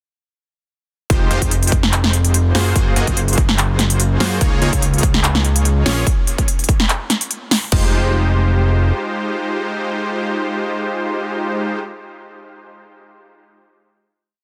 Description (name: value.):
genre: future bass.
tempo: 145 BPM.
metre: 4/4.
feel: swing 54% on 16ths, half-time.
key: unclear.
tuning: A4 = 441 Hz.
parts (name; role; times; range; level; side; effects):
supersaw stab; riff; 1.1-11.8 s; Ab3 to Eb5; -24 LUFS; equal; sidechain pumping, dub echo.
fat analog bass; bass; 1.1-8.9 s; F1 to Gb2; -19 LUFS; equal; sidechain pumping.
big-room dance drum kit; drums; 1.1-7.8 s; crash cymbal, handclaps, hi-hat, snare drum; -21 LUFS; equal; overdrive.
electronic kick drum; drums; 1.1-7.8 s; none; -20 LUFS; equal; overdrive.
room: little or no reverb.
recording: dense, heavily limited modern master.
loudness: -17 LUFS.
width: mono.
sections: 1.1-7.7 drop; 7.7-11.0 final chord.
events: drop 1.1-7.7.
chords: 1.1 Fm9; 2.5 Gbmaj9#11; 4.4 Db69; 5.9 Bbm7; 7.7 Fm9.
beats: | 1.10 1.51 1.93 2.34 | 2.76 3.17 3.58 4.00 | 4.41 4.83 5.24 5.65 | 6.07 6.48 6.89 7.31 | 7.72 8.13 8.55 8.96 | 9.38 9.79 10.20 10.62.